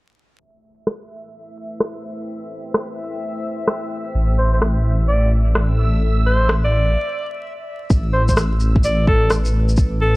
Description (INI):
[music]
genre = future garage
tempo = 128 BPM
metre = 4/4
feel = swing 65% on 16ths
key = A minor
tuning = A4 = 440 Hz
[part]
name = dark analog pad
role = sustained chords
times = 1.5-10.2 s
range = A3 to G5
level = -32 LUFS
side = left 1 dB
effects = chorus, vintage 12-bit sampler grit, sidechain pumping
[part]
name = backwards swelling texture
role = texture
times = 0.4-7.0 s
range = E5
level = -33 LUFS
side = equal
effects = built-in reverb
[part]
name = electronic rim click and shaker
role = drums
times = 0.9-9.9 s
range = none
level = -21 LUFS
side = equal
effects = small room ambience
[part]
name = dark detuned saw bass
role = bass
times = 4.1-10.2 s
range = A1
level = -16 LUFS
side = equal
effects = tube saturation, sidechain pumping
[part]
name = clear alto saxophone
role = melody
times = 4.4-10.2 s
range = A4 to D5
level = -22 LUFS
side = equal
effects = analog delay
[part]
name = electronic kick drum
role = drums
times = 7.9-9.9 s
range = none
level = -17 LUFS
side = equal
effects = small room ambience
[sound]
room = little or no reverb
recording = dry, gritty hardware recording, transformer saturation, vinyl crackle, low-pass filter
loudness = -16 LUFS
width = side -21 dB against mid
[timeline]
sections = 0.4-7.9 A section; 7.9-10.2 B section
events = fade-in on analog synth pad 0.4-7.9; filter sweep 0.4-7.9; break 7.0-7.9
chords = 0.4 Am7; 7.9 Asus2